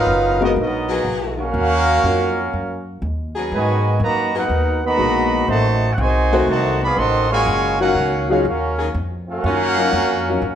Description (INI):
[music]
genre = jazz, big band swing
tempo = 122 BPM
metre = 4/4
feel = swing 69% on 8ths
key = Eb minor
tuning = A4 = 441 Hz
[part]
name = warm trumpet section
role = melody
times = 0.0-10.6 s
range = Cb4 to C6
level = -20 LUFS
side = right 1 dB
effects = none
[part]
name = mellow trombone section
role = second line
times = 0.0-10.6 s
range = Bb2 to Gb4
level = -23 LUFS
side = right 1 dB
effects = none
[part]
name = upright bass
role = bass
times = 0.0-10.6 s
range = Gb1 to Ab2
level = -22 LUFS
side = equal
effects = none
[part]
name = warm grand piano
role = accompaniment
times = 0.4-10.4 s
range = Gb3 to C5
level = -21 LUFS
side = left 4 dB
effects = none
[part]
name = warm saxophone section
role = sustained chords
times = 0.9-9.7 s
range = Eb3 to Ab4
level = -25 LUFS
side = left 3 dB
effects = none
[sound]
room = moderate large studio reverb, RT60 1.1 s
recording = heard from further back in the room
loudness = -16 LUFS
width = side -9 dB against mid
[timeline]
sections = 0.0-10.6 A section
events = none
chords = 0.0 Abm9; 1.5 Ebm9; 3.5 Abm9; 5.5 Adim7; 7.5 Ebm9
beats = 0.07 0.56 1.05 | 1.54 2.04 2.53 3.02 | 3.51 4.01 4.50 4.99 | 5.49 5.98 6.47 6.97 | 7.46 7.95 8.45 8.94 | 9.43 9.93 10.42